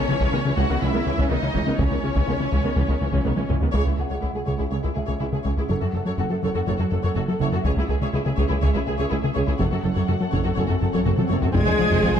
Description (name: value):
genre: cinematic, hybrid orchestral and electronic film score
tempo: 123 BPM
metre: 4/4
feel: straight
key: C# minor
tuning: A4 = 443 Hz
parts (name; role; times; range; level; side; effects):
- warm studio violin section; melody; 0.0-12.2 s; C#5 to Ab6; -32 LUFS; left 4 dB; low-pass filter
- clear symphonic violin section; second line; 0.0-12.2 s; C4 to C#5; -32 LUFS; left 3 dB; none
- rich studio viola section; accompaniment; 0.0-12.2 s; D#3 to A4; -29 LUFS; right 3 dB; low-pass filter
- plucky analog bass; riff; 0.0-12.2 s; C#2 to F#3; -24 LUFS; left 2 dB; low-pass filter
- dark grand piano; texture; 0.0-12.2 s; C#4 to G#5; -39 LUFS; left 4 dB; none
- clear symphonic cello section; bass; 0.1-12.2 s; C#2 to Ab3; -28 LUFS; right 2 dB; none
- clear symphonic double bass section; bass; 0.1-12.2 s; F1 to C#2; -28 LUFS; right 4 dB; none
- taiko ensemble; drums; 0.2-4.7, 7.6-12.2 s; none; -28 LUFS; equal; none
- swell and sub drop; sound effects; 10.3-12.2 s; none; -30 LUFS; left 2 dB; none
- clear trombone section; sustained chords; 11.5-12.2 s; F3 to C4; -31 LUFS; right 1 dB; low-pass filter
- dark French horn section; sustained chords; 11.5-12.2 s; Ab4; -27 LUFS; left 8 dB; low-pass filter
room: light reverb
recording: dark, warm production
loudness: -20 LUFS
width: side -8 dB against mid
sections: 0.0-3.7 A section; 3.7-11.6 B section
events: drum fill 3.3-3.7, 11.1-11.6; band accent 3.7-4.2; filter sweep 3.7-11.6; swell 10.3-11.6; impact 11.6-12.2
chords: 0.0 C#m; 5.7 F#m; 7.7 C#m; 9.6 F#m; 11.6 Fm